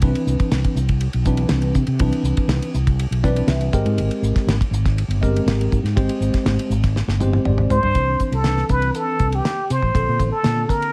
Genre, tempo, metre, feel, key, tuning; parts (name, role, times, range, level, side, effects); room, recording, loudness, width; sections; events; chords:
electric jazz fusion; 121 BPM; 4/4; straight; C major; A4 = 440 Hz
tine electric piano; accompaniment; 0.0-10.9 s; D3 to G5; -26 LUFS; equal; phaser
fretless electric bass; bass; 0.0-10.6 s; G1 to C3; -22 LUFS; equal
damped 70s drum kit; drums; 0.0-10.9 s; hi-hat, kick drum, ride cymbal, snare drum, toms; -25 LUFS; equal
trumpet with plunger mute; melody; 7.7-10.9 s; G4 to C5; -24 LUFS; equal; slapback echo
light reverb, studio ambience; -19 LUFS; mono
0.0-8.0 A section; 8.0-10.9 B section
tine electric piano fill 3.0-4.0, 7.2-8.0; drum fill 7.0-8.0
0.0 Cmaj9; 3.7 Abmaj9; 8.0 Cmaj9; 9.9 Bbmaj9